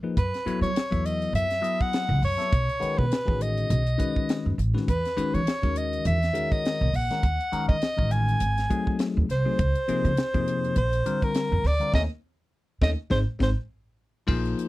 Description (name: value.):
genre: electric jazz fusion.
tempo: 102 BPM.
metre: 4/4.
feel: swing 56% on 16ths.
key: C# dorian.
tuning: A4 = 440 Hz.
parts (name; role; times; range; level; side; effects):
barky tine electric piano; accompaniment; 0.0-14.7 s; B#2 to E5; -29 LUFS; left 4 dB; phaser.
breathy soprano saxophone; melody; 0.2-13.5 s; A#4 to G#5; -28 LUFS; equal; slapback echo.
upright bass; bass; 0.2-14.5 s; G#1 to F#3; -26 LUFS; right 1 dB; none.
tight funk drum kit; drums; 0.2-14.7 s; crash cymbal, hi-hat, kick drum, snare drum; -28 LUFS; equal; none.
room: little or no reverb.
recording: dry, close 1970s-style studio recording.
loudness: -23 LUFS.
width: side -17 dB against mid.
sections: 0.0-14.3 A section.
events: band accent 11.9-14.3.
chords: 0.2 F#m7; 2.5 B9; 4.9 Emaj7; 7.2 D#m7; 8.4 G#7b9; 9.6 C#maj9; 10.8 A#; 11.9 C#sus2/D#; 13.1 G#.